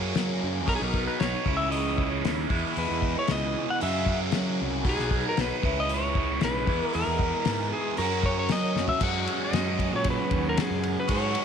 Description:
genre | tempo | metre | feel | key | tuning
psychedelic rock | 115 BPM | 4/4 | straight | unclear | A4 = 439 Hz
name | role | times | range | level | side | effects
clean lap steel guitar | melody | 0.0-11.4 s | G#4 to F#5 | -30 LUFS | left 2 dB | tape echo
rich studio string section | sustained chords | 0.0-11.4 s | E4 to B5 | -40 LUFS | right 12 dB | none
biting overdriven guitar | riff | 0.0-11.4 s | F#2 to F#4 | -29 LUFS | right 2 dB | phaser
fuzz fingered electric bass | bass | 0.0-11.3 s | B1 to F#3 | -31 LUFS | right 1 dB | overdrive
cloth-damped thuddy drum kit | drums | 0.1-11.4 s | crash cymbal, hi-hat, kick drum, ride cymbal, snare drum, toms | -30 LUFS | left 2 dB | none
room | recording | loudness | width
light reverb, small room ambience | 1960s-style stereo | -24 LUFS | side -7 dB against mid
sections
0.0-9.0 A section; 9.0-11.4 B section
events
drum fill 8.8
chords
0.0 F#add9; 0.7 Bmaj7; 1.5 C#m7; 3.8 F#add9; 4.9 Bmaj7; 5.6 C#m7; 6.7 Emaj7; 8.0 F#add9; 9.0 F#sus2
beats
0.16 | 0.68 1.20 1.73 2.25 | 2.77 3.29 3.81 4.34 | 4.86 5.38 5.90 6.42 | 6.95 7.47 7.99 8.51 | 9.03 9.55 10.07 10.59 | 11.11

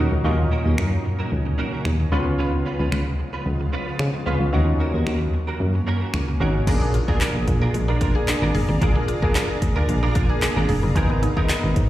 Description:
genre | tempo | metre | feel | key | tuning
dance-pop | 112 BPM | 4/4 | straight | unclear | A4 = 445 Hz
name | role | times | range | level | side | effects
warm analog keys | accompaniment | 0.0-11.9 s | Bb3 to Ab4 | -27 LUFS | equal | chorus, sidechain pumping, plate reverb, slapback echo
shimmering ambient pad | sustained chords | 0.0-11.9 s | Bb2 to Cb6 | -30 LUFS | equal | chorus, built-in reverb, sidechain pumping
direct-recorded clean electric guitar | riff | 0.0-11.8 s | Ab3 to Cb5 | -30 LUFS | right 3 dB | ensemble chorus, slapback echo
solid FM bass | bass | 0.0-11.9 s | F1 to Db3 | -21 LUFS | equal | sidechain pumping
deep house drum kit | drums | 0.8-11.9 s | crash cymbal, finger snaps, handclaps, hi-hat, kick drum, snare drum | -24 LUFS | equal | none
mallet-like synth pluck | arpeggios | 6.7-11.6 s | Ab3 to Bb4 | -32 LUFS | equal | chorus, phaser, sidechain pumping, digital delay, plate reverb, slapback echo
group handclap | percussion | 11.5-11.6 s | none | -37 LUFS | left 2 dB | none
room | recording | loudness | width
light reverb | live gig heard through the venue's PA, recital hall reverb | -19 LUFS | side -14 dB against mid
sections
0.0-6.7 A section; 6.7-11.9 B section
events
none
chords
0.0 Ebm7; 2.1 Db7; 4.5 Ebm7; 6.7 Bb7; 11.0 Abmadd9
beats
| 0.24 0.78 1.32 1.85 | 2.39 2.92 3.46 3.99 | 4.53 5.07 5.60 6.14 | 6.67 7.21 7.74 8.28 | 8.82 9.35 9.89 10.42 | 10.96 11.49

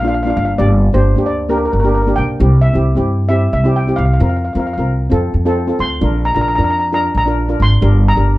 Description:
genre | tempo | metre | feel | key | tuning
calypso | 133 BPM | 4/4 | swing 54% on 16ths | Bb major | A4 = 440 Hz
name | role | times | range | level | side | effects
steel pan | melody | 0.0-8.4 s | Bb4 to C6 | -19 LUFS | equal | none
steel pan | accompaniment | 0.0-8.3 s | Bb3 to Bb4 | -18 LUFS | equal | none
upright bass | bass | 0.0-8.4 s | G1 to G2 | -14 LUFS | equal | none
room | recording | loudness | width
light reverb | dark, warm production | -12 LUFS | side -17 dB against mid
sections
0.0-8.4 A section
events
none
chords
0.0 Bb; 0.6 Gm; 2.4 C; 4.2 Fsus4; 5.1 F; 6.0 Bb; 7.8 Gm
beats
0.15 | 0.60 1.05 1.50 1.95 | 2.40 2.85 3.31 3.76 | 4.21 4.66 5.12 5.57 | 6.02 6.47 6.92 7.38 | 7.83 8.28

